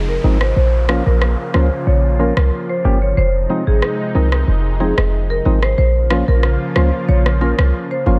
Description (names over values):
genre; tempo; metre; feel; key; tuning
dancehall; 92 BPM; 4/4; straight; unclear; A4 = 443 Hz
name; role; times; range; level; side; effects
lush unison pad; sustained chords; 0.0-8.2 s; C3 to F4; -27 LUFS; equal; chorus, phaser, low-pass filter
short 808-style bass; bass; 0.0-8.2 s; F1 to Db2; -17 LUFS; equal; none
downlifter; sound effects; 0.0-3.2 s; none; -36 LUFS; equal; none
marimba with medium mallets; melody; 0.1-8.0 s; Ab4 to Db5; -24 LUFS; equal; low-pass filter
percussive organ stab; accompaniment; 0.2-8.2 s; F3 to G4; -23 LUFS; equal; chorus, low-pass filter
electronic rim click; drums; 0.4-7.7 s; none; -25 LUFS; equal; vintage 12-bit sampler grit
room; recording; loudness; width
little or no reverb; none; -16 LUFS; mono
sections
0.0-8.2 A section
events
filter sweep 0.0-8.2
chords
0.0 Fm7; 0.6 Bbm; 3.2 Fm7; 5.8 Bbm